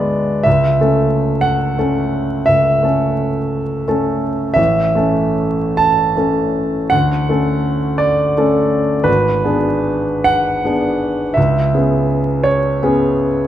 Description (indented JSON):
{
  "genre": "classical, romantic nocturne for solo piano",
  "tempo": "45-62 BPM (dotted quarters)",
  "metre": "12/8",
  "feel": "rubato",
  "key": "A major",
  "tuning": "A4 = 440 Hz",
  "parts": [
    { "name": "clear grand piano", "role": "solo", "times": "0.0-13.5 s", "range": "G#1 to A5", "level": "-13 LUFS", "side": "equal", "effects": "none" }
  ],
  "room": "moderate recital hall reverb, RT60 1.7 s",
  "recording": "minimal, uncompressed stereo recording, vinyl crackle",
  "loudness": "-13 LUFS",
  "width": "side -11 dB against mid",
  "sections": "0.0-13.5 A section",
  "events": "none",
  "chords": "0.5 A/C#; 4.6 A; 6.9 Dmaj7; 9.1 G#dim; 11.4 C#m7",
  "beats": "| 0.47 1.45 2.48 3.54 | 4.58 5.80 6.93 8.01 | 9.07 10.27 11.37 12.47"
}